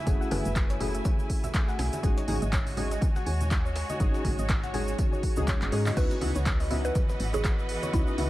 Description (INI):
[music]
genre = deep house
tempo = 122 BPM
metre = 4/4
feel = swing 57% on 16ths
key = unclear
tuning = A4 = 440 Hz
[part]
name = warbly tape-like pad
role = sustained chords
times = 0.0-8.3 s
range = E3 to E5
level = -41 LUFS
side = left 2 dB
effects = chorus, built-in reverb, sidechain pumping
[part]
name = soft round pluck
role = arpeggios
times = 0.0-8.3 s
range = B4 to G#5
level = -40 LUFS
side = left 1 dB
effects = chorus, sidechain pumping, digital delay
[part]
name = bright symphonic string section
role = texture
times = 0.0-8.3 s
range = E3 to G#5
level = -38 LUFS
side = right 1 dB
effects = sidechain pumping
[part]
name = warm analog keys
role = stabs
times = 0.1-8.3 s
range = G#3 to G#4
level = -34 LUFS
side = left 1 dB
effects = chorus, vintage 12-bit sampler grit, sidechain pumping, digital delay
[part]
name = woody FM bass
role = bass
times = 0.1-8.3 s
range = F#1 to G#2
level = -30 LUFS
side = equal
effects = sidechain pumping
[part]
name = breakbeat sampler-style drum kit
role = drums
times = 0.1-8.3 s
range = hi-hat, snare drum, tambourine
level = -45 LUFS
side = equal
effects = none
[part]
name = deep house drum kit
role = drums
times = 0.1-8.3 s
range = crash cymbal, handclaps, hi-hat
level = -36 LUFS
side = equal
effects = none
[part]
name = electronic kick drum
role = drums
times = 0.1-8.0 s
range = none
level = -27 LUFS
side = equal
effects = none
[part]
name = tube shaker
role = percussion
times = 0.1-8.2 s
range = none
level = -49 LUFS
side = right 1 dB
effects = none
[part]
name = mallet-like synth pluck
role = melody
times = 0.3-0.8, 6.0-8.3 s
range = E4 to B4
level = -36 LUFS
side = right 1 dB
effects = chorus, phaser, digital delay
[part]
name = congas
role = percussion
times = 0.3-8.3 s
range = none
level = -39 LUFS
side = right 1 dB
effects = none
[sound]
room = little or no reverb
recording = vinyl crackle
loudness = -25 LUFS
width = side -16 dB against mid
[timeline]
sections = 0.0-8.3 A section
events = drum fill 5.6-6.0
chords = 0.0 F#m9; 2.0 G#7sus4; 6.0 C#m11